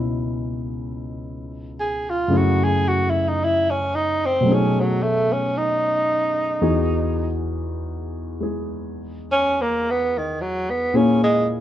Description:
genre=jazz ballad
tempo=56 BPM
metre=4/4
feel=swing 66% on 8ths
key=E major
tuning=A4 = 441 Hz
part: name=warm concert grand piano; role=accompaniment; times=0.0-11.6 s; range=C#2 to G#4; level=-22 LUFS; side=left 1 dB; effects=none
part: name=warm tenor saxophone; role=melody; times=1.8-11.5 s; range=D#3 to G#4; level=-20 LUFS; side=right 1 dB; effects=plate reverb
room=moderate studio reverb, RT60 0.8 s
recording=dark, warm production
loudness=-19 LUFS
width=side -11 dB against mid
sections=0.0-11.6 A section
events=tenor saxophone solo 0.0-11.6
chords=0.0 C#m7; 2.3 F#m7; 4.5 B13; 6.6 Emaj7; 10.9 A#m7b5

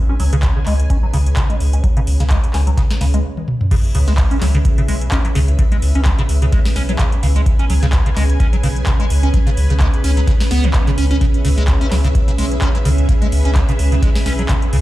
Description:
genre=acid house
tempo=128 BPM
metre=4/4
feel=swing 55% on 16ths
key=C# minor pentatonic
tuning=A4 = 440 Hz
part: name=string machine, full ensemble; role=sustained chords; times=0.0-14.8 s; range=C#4 to G#5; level=-25 LUFS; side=right 1 dB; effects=ensemble chorus, sidechain pumping
part: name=liquid acid bass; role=riff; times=0.1-14.8 s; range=C#3 to C#4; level=-22 LUFS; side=equal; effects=phaser, tube saturation, lush chorus, tape echo
part: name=warm sub bass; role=bass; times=0.2-14.8 s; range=B1 to C#2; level=-15 LUFS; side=equal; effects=sidechain pumping
part: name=booming analog drum machine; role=drums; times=0.2-14.8 s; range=crash cymbal, handclaps, hi-hat, snare drum, toms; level=-25 LUFS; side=equal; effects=overdrive
part: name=electronic kick drum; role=drums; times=0.4-14.6 s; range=none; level=-16 LUFS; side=equal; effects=overdrive
room=little or no reverb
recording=played on a big sound system in a bare room, large studio reverb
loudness=-13 LUFS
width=side -16 dB against mid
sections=0.0-3.7 A section; 3.7-14.8 B section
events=stop 3.2-3.7; drum fill 3.4-3.7; drop 3.7-14.8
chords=0.0 C#7(no3); 3.7 C#m7

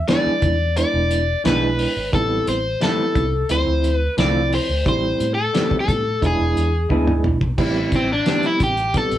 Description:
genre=straight-eighth soul blues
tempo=88 BPM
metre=4/4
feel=straight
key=A minor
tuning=A4 = 440 Hz
part: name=overdriven semi-hollow guitar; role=melody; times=0.0-9.2 s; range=C4 to D5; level=-21 LUFS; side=left 2 dB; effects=none
part: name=overdriven tine electric piano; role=accompaniment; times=0.1-9.2 s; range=F3 to G4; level=-23 LUFS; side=right 4 dB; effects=fast tremolo
part: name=electric guitar through a small old amp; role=stabs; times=0.1-8.5 s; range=A2 to G#4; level=-26 LUFS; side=left 1 dB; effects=none
part: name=cloth-damped thuddy drum kit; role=drums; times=0.1-9.2 s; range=crash cymbal, hi-hat, kick drum, snare drum, toms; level=-23 LUFS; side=equal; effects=none
part: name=vintage muted fingered electric bass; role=bass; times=0.3-9.2 s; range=E1 to A2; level=-23 LUFS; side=equal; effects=none
room=moderate studio reverb, RT60 0.6 s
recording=band playing live in one room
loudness=-17 LUFS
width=side -12 dB against mid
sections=0.0-7.6 A section; 7.6-9.2 B section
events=drum fill 6.9-7.6; overdriven electric guitar solo 7.6-9.2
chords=0.0 E7; 2.1 Am7; 3.5 Dm7; 4.9 Am7; 6.2 E7; 7.6 Am7

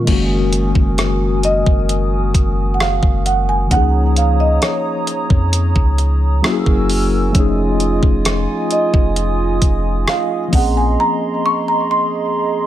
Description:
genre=contemporary R&B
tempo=66 BPM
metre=4/4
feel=straight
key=unclear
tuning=A4 = 440 Hz
part: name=mellow tine electric piano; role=accompaniment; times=0.0-12.7 s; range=Eb3 to Ab4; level=-21 LUFS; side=left 3 dB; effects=medium stereo tremolo
part: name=hollow soft pad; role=sustained chords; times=0.0-12.7 s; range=F3 to Fb6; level=-22 LUFS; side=right 3 dB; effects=chorus
part: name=long sustained 808-style bass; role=bass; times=0.0-11.0 s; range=F1 to F2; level=-17 LUFS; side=equal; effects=none
part: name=clean 12-bit digital drum machine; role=drums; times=0.1-10.7 s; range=crash cymbal, hi-hat, kick drum, rim click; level=-16 LUFS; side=equal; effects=none
part: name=marimba with soft mallets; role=melody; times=1.4-12.7 s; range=Db5 to Db6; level=-19 LUFS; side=right 2 dB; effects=tape echo
room=digital ambience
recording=none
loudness=-13 LUFS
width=side -12 dB against mid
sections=0.1-12.7 A section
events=none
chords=0.1 Gb69; 3.7 Db69; 6.4 Gb9; 7.3 F7alt; 10.5 Bbm9

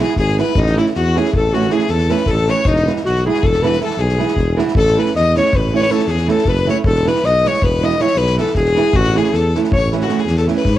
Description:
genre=balkan folk, Balkan wedding band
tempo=315 BPM (eighths)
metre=11/8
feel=straight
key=unclear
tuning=A4 = 440 Hz
part: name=mellow alto saxophone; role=melody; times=0.0-10.8 s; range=D#4 to D#5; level=-18 LUFS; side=left 1 dB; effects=cassette tape, plate reverb
part: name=bright violin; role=second line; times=0.0-10.8 s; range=D#4 to D#5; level=-23 LUFS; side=left 9 dB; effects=cassette tape, plate reverb
part: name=nylon-string guitar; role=accompaniment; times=0.0-10.6 s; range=E3 to E4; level=-20 LUFS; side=right 6 dB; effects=cassette tape, plate reverb
part: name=soft-mallet drum kit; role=percussion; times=0.1-10.8 s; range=kick drum, snare drum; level=-22 LUFS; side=left 1 dB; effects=none
part: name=mellow tuba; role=bass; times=0.2-10.8 s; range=E1 to G#2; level=-18 LUFS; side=left 1 dB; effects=none
room=moderate studio reverb, RT60 0.5 s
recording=home recording on cassette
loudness=-13 LUFS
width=side -13 dB against mid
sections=0.0-10.8 A section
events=none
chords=0.0 E; 0.6 A; 2.7 E; 4.8 A; 6.8 E; 8.9 A

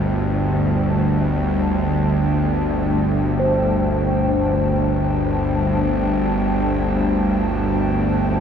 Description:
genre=dark ambient drone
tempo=free time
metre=none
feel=none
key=unclear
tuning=A4 = 441 Hz
part: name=dark analog pad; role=sustained chords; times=0.0-8.4 s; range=G3 to A5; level=-24 LUFS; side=equal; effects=chorus
part: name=bowed-like drone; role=drone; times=0.0-8.4 s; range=G1 to D2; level=-18 LUFS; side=equal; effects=built-in reverb
part: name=bronze singing bowl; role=texture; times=0.0-8.4 s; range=C5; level=-28 LUFS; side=left 1 dB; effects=stereo widening
room=wet cathedral reverb, RT60 5.0 s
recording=in a vast, echoing space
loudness=-17 LUFS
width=side -7 dB against mid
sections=0.0-8.4 A section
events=none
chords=0.0 G5

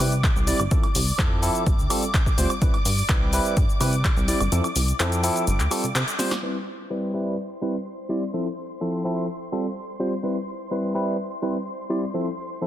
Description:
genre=filtered disco house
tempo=126 BPM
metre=4/4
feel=straight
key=C major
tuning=A4 = 440 Hz
part: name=barky tine electric piano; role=accompaniment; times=0.0-12.7 s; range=F3 to D5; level=-26 LUFS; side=equal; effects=phaser, sidechain pumping, low-pass filter
part: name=string machine, full ensemble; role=sustained chords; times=0.0-12.7 s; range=C6 to D6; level=-34 LUFS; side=equal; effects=ensemble chorus, sidechain pumping, low-pass filter
part: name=plucky analog bass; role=bass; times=0.0-6.0 s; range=G1 to C3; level=-24 LUFS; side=equal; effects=sidechain pumping, low-pass filter
part: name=punchy analog drum machine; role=drums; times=0.0-6.4 s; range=cabasa, handclaps, hi-hat, snare drum, woodblock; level=-27 LUFS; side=left 1 dB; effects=sidechain pumping on hats, low-pass filter on hats, sidechain pumping on perc, low-pass filter on perc, low-pass filter on snare
part: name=electronic kick drum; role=drums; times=0.2-4.1 s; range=none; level=-22 LUFS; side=equal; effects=none
room=light reverb, digital ambience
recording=dense, heavily limited modern master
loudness=-21 LUFS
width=side -12 dB against mid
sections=0.0-6.4 A section; 6.4-12.7 B section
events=kick drops out 4.5-6.4; band accent 6.0; drum fill 6.2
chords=0.0 Cmaj7; 0.7 Fmaj7; 1.7 G9sus4; 2.6 Cmaj7; 4.5 Fmaj7; 5.5 G9sus4; 6.4 Cmaj7; 8.3 Fmaj7; 9.3 G9sus4; 10.2 Cmaj7; 12.1 Fmaj7

